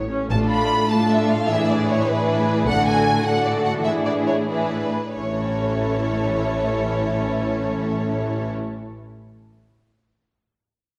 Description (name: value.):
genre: quick classical-period movement for string orchestra.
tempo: 87-104 BPM (dotted quarters).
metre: 6/8.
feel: rubato.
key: A major.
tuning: A4 = 439 Hz.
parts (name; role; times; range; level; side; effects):
clear studio violin section; melody; 0.0-8.5 s; B4 to B5; -27 LUFS; equal; none.
bright studio double bass section; bass; 0.0-3.0, 5.2-8.5 s; A1; -29 LUFS; equal; none.
clear symphonic viola section; accompaniment; 0.1-8.5 s; D3 to D4; -28 LUFS; equal; none.
rich symphonic violin section; second line; 0.3-8.5 s; E4 to A4; -28 LUFS; equal; none.
bright studio cello section; bass; 0.3-8.5 s; A2; -28 LUFS; equal; none.
room: wet scoring stage reverb, RT60 1.6 s.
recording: none.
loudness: -21 LUFS.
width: mono.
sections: 0.3-5.2 A section; 5.2-7.8 B section.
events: slowing down 2.1-5.2.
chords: 0.3 Dm/A; 1.5 E7/A; 2.7 D/A; 3.9 E7/A; 5.2 A.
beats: | 0.32 0.91 | 1.50 2.09 | 2.67 3.26 | 3.86 4.49 | 5.16 5.82 | 6.47 7.12.